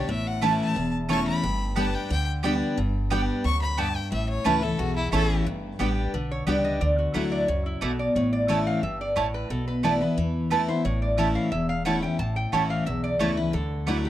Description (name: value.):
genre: bluegrass.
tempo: 178 BPM.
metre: 4/4.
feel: straight.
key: A mixolydian.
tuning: A4 = 439 Hz.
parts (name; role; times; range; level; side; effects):
clear fiddle; second line; 0.0-5.5 s; E4 to C#6; -31 LUFS; left 3 dB; none.
picked steel-string acoustic guitar; accompaniment; 0.0-14.1 s; E2 to G4; -26 LUFS; left 2 dB; none.
upright bass; bass; 0.0-14.0 s; E1 to E2; -29 LUFS; equal; none.
mandolin; stabs; 0.4-14.0 s; A3 to A5; -28 LUFS; right 7 dB; none.
lap resonator guitar; melody; 6.1-14.1 s; E4 to A5; -29 LUFS; equal; none.
room: studio reverb.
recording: dry, close 1970s-style studio recording.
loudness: -23 LUFS.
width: side -13 dB against mid.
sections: 0.0-5.5 A section; 5.5-14.1 B section.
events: fiddle solo 0.0-5.5.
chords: 0.1 A; 1.4 G; 4.1 A; 5.5 G; 6.8 Dadd9; 8.2 A; 9.5 Esus4/B; 10.8 A; 13.5 Dadd9.